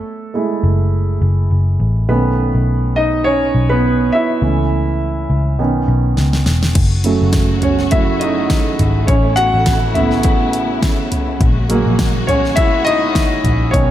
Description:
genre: piano-driven pop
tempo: 103 BPM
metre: 4/4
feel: swing 56% on 16ths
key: unclear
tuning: A4 = 440 Hz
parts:
  - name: warm grand piano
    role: accompaniment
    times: 0.0-13.9 s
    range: C#3 to F#5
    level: -16 LUFS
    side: right 2 dB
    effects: slapback echo
  - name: vintage muted picked electric bass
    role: bass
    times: 0.6-13.9 s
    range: E1 to C#2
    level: -16 LUFS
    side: left 1 dB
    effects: none
  - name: pop drum kit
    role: drums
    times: 6.2-13.9 s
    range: crash cymbal, hi-hat, kick drum, snare drum, toms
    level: -17 LUFS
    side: equal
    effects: none
  - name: warm studio string section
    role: sustained chords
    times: 6.7-13.9 s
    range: C#3 to F#4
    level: -24 LUFS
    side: left 4 dB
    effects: none
room: moderate lush hall reverb, RT60 1.6 s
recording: big arena sound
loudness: -13 LUFS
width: side -12 dB against mid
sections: 0.0-6.8 A section; 6.8-13.9 B section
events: grand piano solo 0.0-6.8, 6.8-13.9; drum fill 6.2-6.8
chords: 0.0 F#m7; 2.1 B7; 4.4 A/C#; 5.6 Badd9; 6.8 F#m; 9.1 Aadd9; 11.4 F#add9/A#

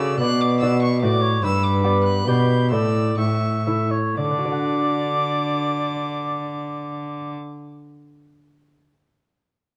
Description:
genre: classical, renaissance-style consort dance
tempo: 115-148 BPM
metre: 3/4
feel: straight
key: D major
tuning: A4 = 440 Hz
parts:
  - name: rich violin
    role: melody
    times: 0.0-7.3 s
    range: C#6 to G6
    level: -33 LUFS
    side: equal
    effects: none
  - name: warm cor anglais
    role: second line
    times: 0.0-7.3 s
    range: B4 to E5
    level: -28 LUFS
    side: equal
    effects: none
  - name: lute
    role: accompaniment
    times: 0.0-7.7 s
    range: G2 to F#5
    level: -28 LUFS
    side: equal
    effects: none
  - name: rich cello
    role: bass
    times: 0.0-7.3 s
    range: G2 to D3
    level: -25 LUFS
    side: equal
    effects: none
room: moderate stone room reverb, RT60 1.3 s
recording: none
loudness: -21 LUFS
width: mono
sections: 0.0-4.2 A section; 4.2-7.3 B section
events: slowing down 0.8-4.2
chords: 0.2 Bm; 1.4 G; 2.7 Asus4; 3.2 A; 4.2 D

